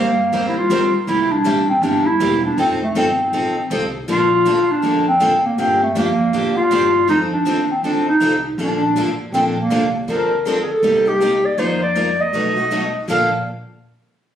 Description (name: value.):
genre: acoustic string swing (jazz manouche).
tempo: 160 BPM.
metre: 4/4.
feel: swing 63% on 8ths.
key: Bb major.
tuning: A4 = 440 Hz.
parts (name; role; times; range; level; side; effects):
breathy clarinet; melody; 0.0-13.3 s; A3 to F5; -16 LUFS; equal; none.
picked steel-string acoustic guitar; accompaniment; 0.0-13.3 s; Bb2 to C5; -24 LUFS; left 4 dB; none.
picked steel-string acoustic guitar; accompaniment; 0.0-13.3 s; Bb2 to B4; -26 LUFS; right 3 dB; none.
upright bass; bass; 0.0-13.3 s; E1 to A2; -28 LUFS; equal; none.
room: moderate studio reverb, RT60 0.8 s.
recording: recorded on a phone in the room, studio reverb, compression.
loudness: -15 LUFS.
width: side -9 dB against mid.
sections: 0.0-10.1 A section; 10.1-13.1 B section; 13.1-14.4 C section.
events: none.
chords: 0.0 Eb6; 1.1 C7; 2.6 F7; 4.1 Bbmaj7; 5.6 Gm7; 7.1 F7; 8.6 Bbmaj7; 10.1 Dm7; 10.8 Cm7; 11.6 F7sus4; 12.3 B7; 13.1 Bbmaj7.